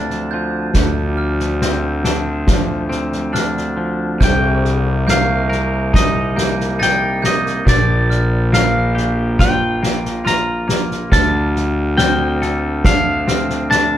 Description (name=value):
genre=post-rock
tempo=69 BPM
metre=4/4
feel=straight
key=unclear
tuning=A4 = 440 Hz
part: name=glockenspiel with soft plastic mallets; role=arpeggios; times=0.0-14.0 s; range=F6 to A6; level=-27 LUFS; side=right 4 dB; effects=none
part: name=twangy electric guitar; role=arpeggios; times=0.0-14.0 s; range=Bb2 to Bb4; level=-23 LUFS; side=left 1 dB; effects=none
part: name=fuzz fingered electric bass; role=bass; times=0.0-14.0 s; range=Bb1 to D2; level=-19 LUFS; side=equal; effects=overdrive
part: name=soft-mallet drum kit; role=drums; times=0.1-13.9 s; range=crash cymbal, kick drum, snare drum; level=-18 LUFS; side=equal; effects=none
part: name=twangy electric guitar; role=melody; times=4.2-14.0 s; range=D5 to Bb5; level=-19 LUFS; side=equal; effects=none
room=moderate studio reverb, RT60 0.9 s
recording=band playing live in one room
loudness=-14 LUFS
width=side -11 dB against mid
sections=0.0-4.2 A section; 4.2-14.0 B section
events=none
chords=0.0 Dm7; 4.2 Cm7; 7.7 Gm7/Bb; 11.1 Dm7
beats=| 0.75 1.61 2.48 3.34 | 4.21 5.07 5.94 6.80 | 7.67 8.53 9.40 10.26 | 11.13 11.99 12.86 13.72